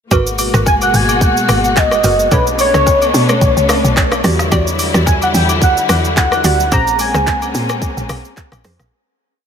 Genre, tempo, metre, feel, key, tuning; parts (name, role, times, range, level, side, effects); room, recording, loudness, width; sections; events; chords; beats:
amapiano; 109 BPM; 4/4; swing 55% on 16ths; A4 = 439 Hz
warm studio string section; sustained chords; 0.1-8.9 s; B2 to F#4; -19 LUFS; left 2 dB; sidechain pumping
hollow square pluck; stabs; 0.1-8.8 s; C#4 to D5; -23 LUFS; right 3 dB; chorus, analog delay
woody log drum bass; bass; 0.1-8.9 s; F#1 to B2; -17 LUFS; equal
organic electronic drum kit; drums; 0.1-8.9 s; handclaps, hi-hat, kick drum, rim click, shaker, snare drum; -17 LUFS; right 1 dB
agogo bells and woodblock; percussion; 0.1-8.6 s; -25 LUFS; left 8 dB
warm velvety synth lead; melody; 0.7-8.1 s; B4 to A#5; -15 LUFS; equal; chorus, analog delay
moderate huge ambient reverb, RT60 7.7 s; dreamy mix soaked in reverb; -11 LUFS; side -7 dB against mid
0.1-8.9 drop
drop 0.1-8.9; fade-out 6.7-8.9
0.1 G#m9; 2.3 Bm9; 4.2 Em9; 6.7 A#m9
| 0.11 0.66 1.21 1.76 | 2.31 2.87 3.42 3.97 | 4.52 5.07 5.62 6.17 | 6.72 7.27 7.82 8.37